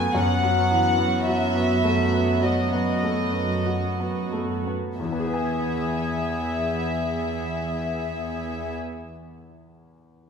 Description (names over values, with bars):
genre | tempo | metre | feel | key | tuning
cinematic, emotional film score for orchestra | 44-55 BPM | 4/4 | rubato | E major | A4 = 437 Hz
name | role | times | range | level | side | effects
warm symphonic violin section | melody | 0.0-8.7 s | D#5 to G#5 | -27 LUFS | left 1 dB | none
bright grand piano | accompaniment | 0.0-10.3 s | E2 to G#5 | -27 LUFS | left 1 dB | none
rich studio viola section | accompaniment | 0.0-8.8 s | B3 to G#4 | -29 LUFS | equal | none
dark chamber cello section | bass | 0.0-8.7 s | E2 to F#2 | -28 LUFS | right 3 dB | none
room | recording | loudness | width
wet scoring stage reverb, RT60 1.9 s | minimal, uncompressed stereo recording | -22 LUFS | side -6 dB against mid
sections
0.0-5.0 A section; 5.0-10.1 B section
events
slowing down 0.0-5.0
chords
0.0 B/F#; 5.0 E